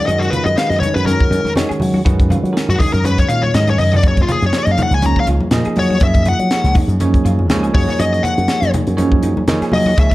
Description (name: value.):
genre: electric jazz fusion.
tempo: 121 BPM.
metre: 4/4.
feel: swing 55% on 16ths.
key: F# major.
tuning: A4 = 440 Hz.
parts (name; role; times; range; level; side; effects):
smooth overdriven lead guitar; melody; 0.0-10.1 s; E#4 to A#5; -18 LUFS; left 2 dB; none.
bell-like tine electric piano; accompaniment; 0.0-10.1 s; D#3 to D#5; -21 LUFS; right 2 dB; none.
clean electric guitar; stabs; 0.0-10.1 s; C#4 to G#4; -26 LUFS; right 2 dB; analog chorus.
slap bass with an envelope filter; bass; 0.1-10.1 s; C#2 to F#3; -16 LUFS; equal; none.
crisp fusion drum kit; drums; 0.1-10.1 s; hi-hat, kick drum, snare drum; -18 LUFS; equal; none.
congas; percussion; 0.3-10.0 s; none; -23 LUFS; left 1 dB; none.
room: light reverb.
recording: dark, warm production.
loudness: -12 LUFS.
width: side -17 dB against mid.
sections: 0.0-10.1 A section.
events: lead electric guitar solo 0.0-10.1; drum fill 3.4-4.0.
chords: 0.0 B69/F#; 4.0 F#maj9; 7.7 F#maj13.